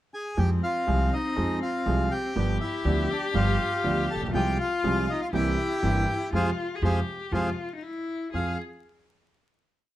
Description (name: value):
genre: tango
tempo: 121 BPM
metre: 4/4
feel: rubato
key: F minor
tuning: A4 = 440 Hz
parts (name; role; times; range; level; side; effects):
- bandoneon; melody; 0.1-8.6 s; D4 to A5; -29 LUFS; equal; none
- clear cello; second line; 0.4-8.6 s; C4 to Ab4; -32 LUFS; left 4 dB; none
- clear concert grand piano; accompaniment; 0.4-8.5 s; G1 to Ab4; -29 LUFS; right 2 dB; none
- upright bass; bass; 0.4-8.5 s; G1 to F2; -28 LUFS; equal; none
room: light reverb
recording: close, detailed microphones, vinyl crackle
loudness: -24 LUFS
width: side -14 dB against mid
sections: 0.0-0.4 pickup bar; 0.4-8.3 A section; 8.3-10.0 final chord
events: band accent 6.3-8.3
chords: 0.4 Fm; 2.4 G7; 4.3 Fm/C; 5.3 C7; 6.3 Fm; 7.8 N.C.; 8.3 Fm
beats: | 0.38 0.88 1.37 1.87 | 2.36 2.86 3.35 3.85 | 4.34 4.84 5.33 5.83 | 6.33 6.83 7.33 7.83 | 8.34